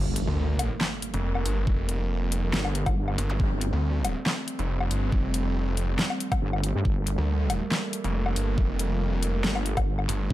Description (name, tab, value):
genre	heavy wobble dubstep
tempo	139 BPM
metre	4/4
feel	half-time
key	G minor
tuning	A4 = 440 Hz
part	dark studio string section	sustained chords	0.0-10.3 s	G3 to C4	-34 LUFS	right 3 dB	stereo widening, sidechain pumping, low-pass filter
part	wobble bass	bass	0.0-3.7, 6.4-10.3 s	G1 to G2	-27 LUFS	equal	chorus, overdrive
part	impact and zap	sound effects	0.0-3.4 s	none	-37 LUFS	equal	none
part	dubstep drum kit	drums	0.2-10.2 s	handclaps, hi-hat, snare drum, woodblock	-29 LUFS	left 2 dB	overdrive, small room ambience
part	snarling distorted saw bass	bass	0.3-10.3 s	F1 to D2	-26 LUFS	equal	distortion, overdrive
part	electronic kick drum	drums	1.7-10.3 s	none	-26 LUFS	equal	overdrive, small room ambience
room	little or no reverb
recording	none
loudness	-24 LUFS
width	side -15 dB against mid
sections	0.0-10.3 A section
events	impact 0.0-1.7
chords	0.0 Gmadd9